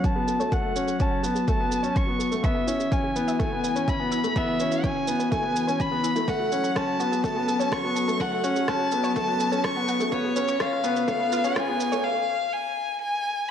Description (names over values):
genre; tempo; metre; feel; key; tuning
piano and strings electronica; 125 BPM; 4/4; straight; F# minor; A4 = 437 Hz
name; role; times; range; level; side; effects
rich violin; melody; 0.0-13.5 s; C#5 to C#6; -27 LUFS; left 2 dB; low-pass filter
lush unison pad; sustained chords; 0.0-12.0 s; C#3 to B4; -34 LUFS; left 1 dB; chorus
analog pluck; arpeggios; 0.0-12.0 s; E4 to G#5; -35 LUFS; right 2 dB; chorus, sidechain pumping, digital delay
warm grand piano; riff; 0.0-12.0 s; A3 to C#4; -26 LUFS; left 1 dB; none
electronic kick drum; drums; 0.0-11.7 s; none; -29 LUFS; equal; overdrive
electronic shaker and rim click; drums; 0.0-12.0 s; none; -34 LUFS; right 2 dB; none
room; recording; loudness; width
wet echo chamber reverb, RT60 1.7 s, digital ambience; dark, warm production, high-pass filter; -22 LUFS; side -8 dB against mid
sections
0.0-13.5 A section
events
build-up 0.0-13.5; filter sweep on analog synth pad 0.0-13.5; filter sweep on synth arpeggio sound 0.0-13.5; filter sweep 0.0-13.5; break 12.0-13.5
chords
0.0 F#m; 2.4 E; 6.3 F#m; 10.1 C#7